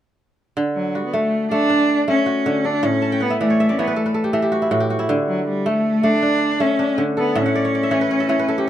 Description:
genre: west african traditional.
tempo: 106 BPM (dotted quarters).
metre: 12/8.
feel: straight.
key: D major.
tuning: A4 = 440 Hz.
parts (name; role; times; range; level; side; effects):
kora; arpeggios; 0.6-8.7 s; A2 to A5; -20 LUFS; right 1 dB; none.
rich cello; melody; 0.8-8.7 s; F#3 to D4; -19 LUFS; left 1 dB; none.
room: moderate studio reverb, RT60 0.5 s.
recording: minimal, uncompressed stereo recording.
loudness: -16 LUFS.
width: side -11 dB against mid.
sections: 0.6-8.7 A section.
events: kora fill 3.0-5.1, 7.4-8.7.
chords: 0.6 D; 2.8 A; 5.1 D5; 7.4 A.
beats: | 0.57 1.13 1.70 2.26 | 2.83 3.40 3.96 4.53 | 5.09 5.66 6.23 6.79 | 7.36 7.92 8.49.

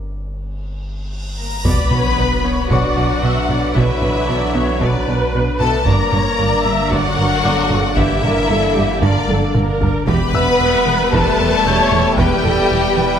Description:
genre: cinematic, hybrid orchestral and electronic film score.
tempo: 114 BPM.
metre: 4/4.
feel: straight.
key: B minor.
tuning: A4 = 440 Hz.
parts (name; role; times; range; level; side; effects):
punchy sub bass; bass; 0.0-13.2 s; E1 to B1; -26 LUFS; equal; none.
cymbal swell and sub drop; sound effects; 1.1-3.8 s; none; -24 LUFS; equal; none.
felt-muted upright piano; texture; 0.0-13.2 s; C#5 to G6; -30 LUFS; left 3 dB; none.
rich symphonic violin section; melody; 1.4-13.2 s; D5 to B5; -22 LUFS; left 4 dB; low-pass filter.
warm symphonic violin section; second line; 1.4-13.2 s; D4 to B4; -23 LUFS; left 2 dB; none.
warm French horn section; sustained chords; 1.4-13.2 s; D3 to B3; -25 LUFS; left 3 dB; low-pass filter.
warm symphonic viola section; accompaniment; 1.6-13.2 s; G4 to E5; -22 LUFS; right 1 dB; low-pass filter.
warm trombone section; sustained chords; 1.6-13.2 s; D3 to Bb3; -26 LUFS; right 4 dB; low-pass filter.
rich symphonic cello section; bass; 1.6-13.0 s; E2 to B2; -24 LUFS; right 2 dB; none.
warm symphonic double bass section; bass; 1.6-13.1 s; E1 to B1; -25 LUFS; right 3 dB; none.
taiko ensemble; drums; 1.6-12.7 s; none; -24 LUFS; equal; none.
airy breathy pad; sustained chords; 1.7-13.2 s; D3 to E5; -24 LUFS; left 1 dB; chorus, low-pass filter.
round analog bass; riff; 1.7-13.1 s; E2 to B3; -23 LUFS; right 2 dB; low-pass filter.
room: moderate concert hall reverb, RT60 1.8 s.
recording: none.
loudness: -13 LUFS.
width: side -8 dB against mid.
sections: 0.0-1.7 A section; 1.7-13.2 B section.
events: break 0.0-1.7; filter sweep 0.0-1.7; cymbal swell 1.1-1.7; impact 1.7-3.8; drum fill 9.3-10.1.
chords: 0.0 Gm; 1.7 Bm; 5.9 Gm; 10.1 Em.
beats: 0.07 0.60 1.13 | 1.65 2.18 2.71 3.23 | 3.76 4.29 4.81 5.34 | 5.86 6.39 6.92 7.44 | 7.97 8.50 9.02 9.55 | 10.07 10.60 11.13 11.65 | 12.18 12.71.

